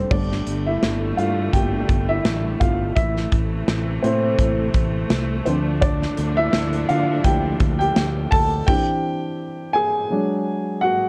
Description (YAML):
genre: piano-driven pop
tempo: 84 BPM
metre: 4/4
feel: swing 56% on 16ths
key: unclear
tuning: A4 = 441 Hz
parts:
  - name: dark upright piano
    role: accompaniment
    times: 0.0-11.1 s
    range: G2 to A5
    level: -24 LUFS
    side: equal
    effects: none
  - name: clear studio string section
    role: sustained chords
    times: 0.0-8.7 s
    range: C3 to D4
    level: -32 LUFS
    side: equal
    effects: none
  - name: fingered electric bass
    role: bass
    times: 0.0-8.6 s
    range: G1 to D3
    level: -26 LUFS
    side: equal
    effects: none
  - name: modern studio drum kit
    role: drums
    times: 0.1-8.9 s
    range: crash cymbal, hi-hat, kick drum, snare drum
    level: -24 LUFS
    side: equal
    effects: none
room: moderate spring reverb, RT60 2.1 s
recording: worn, warbling old tape, cassette tape, warbly pitch drift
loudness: -21 LUFS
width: mono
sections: 0.1-11.1 A section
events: upright piano solo 0.1-11.1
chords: 0.1 Gsus2; 3.0 Am; 5.5 Dmadd9; 8.7 Cadd9/E; 10.1 E7 (rootless)